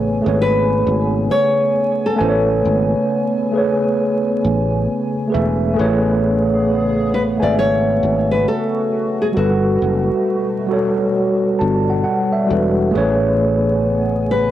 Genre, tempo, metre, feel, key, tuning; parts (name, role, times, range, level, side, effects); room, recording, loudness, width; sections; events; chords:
lo-fi hip hop; 67 BPM; 4/4; swing 65% on 16ths; A major; A4 = 444 Hz
nylon-string guitar; melody; 0.0-14.5 s; F#4 to D5; -19 LUFS; left 1 dB; cassette tape
mellow tine electric piano; accompaniment; 0.0-14.5 s; G3 to A5; -17 LUFS; equal; medium stereo tremolo, cassette tape
dark analog pad; sustained chords; 0.0-14.5 s; B2 to G#5; -26 LUFS; right 1 dB; chorus, phaser, cassette tape
sustaining fretless electric bass; bass; 0.0-14.5 s; E1 to A1; -20 LUFS; equal; lush chorus
moderate spring reverb, RT60 1.7 s, digital ambience; home recording on cassette, vinyl crackle; -15 LUFS; side -12 dB against mid
0.0-5.8 A section; 5.8-14.5 B section
0.0 Amaj9; 9.4 Gmaj9; 12.9 Amaj9